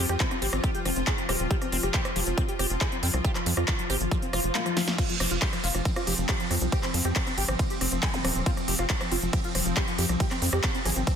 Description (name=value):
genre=psychedelic trance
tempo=138 BPM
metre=4/4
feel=straight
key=F minor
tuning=A4 = 440 Hz
part: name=wide unison lead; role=melody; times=0.0-11.1 s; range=F3 to Ab4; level=-32 LUFS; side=equal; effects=phaser, sidechain pumping, ping-pong delay
part: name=evolving wavetable pad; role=sustained chords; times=0.0-11.2 s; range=F3 to F4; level=-34 LUFS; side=left 1 dB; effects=ensemble chorus, built-in reverb, sidechain pumping
part: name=liquid acid bass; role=riff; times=0.0-11.1 s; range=F3 to G4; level=-37 LUFS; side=moving between left 6 dB and right 5 dB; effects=none
part: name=tight sequencer bass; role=bass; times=0.0-11.0 s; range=Eb1 to F2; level=-29 LUFS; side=equal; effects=none
part: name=big-room dance drum kit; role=drums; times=0.1-11.2 s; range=crash cymbal, handclaps, hi-hat, ride cymbal, rim click, snare drum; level=-29 LUFS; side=equal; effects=none
part: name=electronic kick drum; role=drums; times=0.2-11.2 s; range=none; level=-28 LUFS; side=equal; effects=none
part: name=swell and zap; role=sound effects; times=4.2-5.0, 8.1-8.2 s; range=none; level=-36 LUFS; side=left 1 dB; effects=none
room=light reverb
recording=dense, heavily limited modern master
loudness=-24 LUFS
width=side -8 dB against mid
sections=0.0-11.2 A section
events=swell 4.2-5.0; drum fill 4.8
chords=0.0 F5